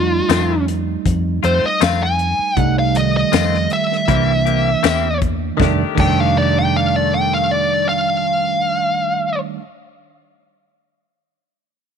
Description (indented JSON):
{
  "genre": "straight-eighth soul blues",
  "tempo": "79 BPM",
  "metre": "4/4",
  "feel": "straight",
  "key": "F mixolydian",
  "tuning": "A4 = 436 Hz",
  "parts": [
    { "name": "smooth overdriven lead guitar", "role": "melody", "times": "0.0-9.4 s", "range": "F4 to Ab5", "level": "-18 LUFS", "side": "left 1 dB", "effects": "none" },
    { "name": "bell-like tine electric piano", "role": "accompaniment", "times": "0.0-9.6 s", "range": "Eb3 to Eb4", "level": "-21 LUFS", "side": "right 14 dB", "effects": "none" },
    { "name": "fingered electric bass", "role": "bass", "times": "0.0-9.6 s", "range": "F1 to F2", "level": "-20 LUFS", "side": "left 1 dB", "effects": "none" },
    { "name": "direct-recorded clean electric guitar", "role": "stabs", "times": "0.3-9.7 s", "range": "Eb3 to G4", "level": "-24 LUFS", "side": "left 14 dB", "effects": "analog chorus" },
    { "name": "tight funk drum kit", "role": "drums", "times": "0.3-6.2 s", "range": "crash cymbal, hi-hat, kick drum, snare drum, tambourine", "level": "-21 LUFS", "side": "left 5 dB", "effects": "none" }
  ],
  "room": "light reverb, small room ambience",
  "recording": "1960s-style stereo with parts hard left and right",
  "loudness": "-14 LUFS",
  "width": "side -7 dB against mid",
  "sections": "0.0-5.6 A section; 5.6-8.6 B section",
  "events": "lead electric guitar solo 0.0-5.6",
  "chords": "0.0 F7; 4.1 C7; 5.6 F13"
}